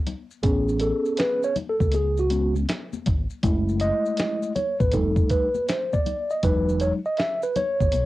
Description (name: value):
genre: hip hop, jazz-hop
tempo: 80 BPM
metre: 4/4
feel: swing 65% on 16ths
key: unclear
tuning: A4 = 440 Hz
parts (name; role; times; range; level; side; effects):
- dusty soul sampler-style drum kit; drums; 0.1-8.1 s; hi-hat, kick drum, snare drum; -25 LUFS; equal; cassette tape
- congas and maracas; percussion; 0.1-8.1 s; none; -35 LUFS; left 6 dB; none
- mellow tine electric piano; accompaniment; 0.4-8.1 s; F#3 to E5; -23 LUFS; equal; medium stereo tremolo, cassette tape
- deep dub fingered electric bass; bass; 0.4-8.1 s; E1 to C#2; -25 LUFS; equal; none
room: moderate booth ambience, RT60 0.2 s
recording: home recording on cassette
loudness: -21 LUFS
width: side -17 dB against mid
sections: 0.0-8.1 A section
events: tine electric piano solo 0.0-8.1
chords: 0.4 Amaj7; 3.4 F#m7; 4.9 F9; 6.4 Emaj7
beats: | 0.43 1.18 1.93 2.68 | 3.43 4.18 4.93 5.68 | 6.43 7.18 7.93